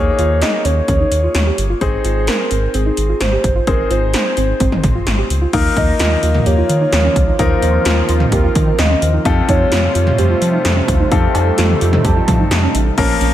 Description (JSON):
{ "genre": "synth-pop", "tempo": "129 BPM", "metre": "4/4", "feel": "straight", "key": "unclear", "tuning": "A4 = 440 Hz", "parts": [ { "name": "hollow clarinet-like synth lead", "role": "melody", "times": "0.0-12.7 s", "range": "Ab4 to A5", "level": "-20 LUFS", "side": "right 1 dB", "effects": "chorus, shimmer reverb" }, { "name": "clear baby grand piano", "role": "accompaniment", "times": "0.0-13.3 s", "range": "C3 to Db5", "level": "-21 LUFS", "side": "left 6 dB", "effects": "shimmer reverb" }, { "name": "soft round pluck", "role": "arpeggios", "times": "0.0-13.3 s", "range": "C4 to Ab4", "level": "-24 LUFS", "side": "right 4 dB", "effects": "chorus, digital delay, shimmer reverb" }, { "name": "round analog bass", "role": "bass", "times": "0.0-13.3 s", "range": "G1 to F3", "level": "-17 LUFS", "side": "equal", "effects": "none" }, { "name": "80s electronic pad drums", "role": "drums", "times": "0.2-13.3 s", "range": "cowbell, crash cymbal, hi-hat, kick drum, snare drum, toms", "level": "-18 LUFS", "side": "equal", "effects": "gated reverb on snare and toms" }, { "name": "sweeping resonant pad", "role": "sustained chords", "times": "5.5-13.3 s", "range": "C3 to F4", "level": "-22 LUFS", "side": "right 1 dB", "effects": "chorus, shimmer reverb" } ], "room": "light reverb", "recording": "none", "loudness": "-12 LUFS", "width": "side -12 dB against mid", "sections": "0.0-5.5 A section; 5.5-13.0 B section", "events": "none", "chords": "0.0 Ebsus4; 1.8 Ab; 5.5 Ebsus2; 9.3 Fadd9" }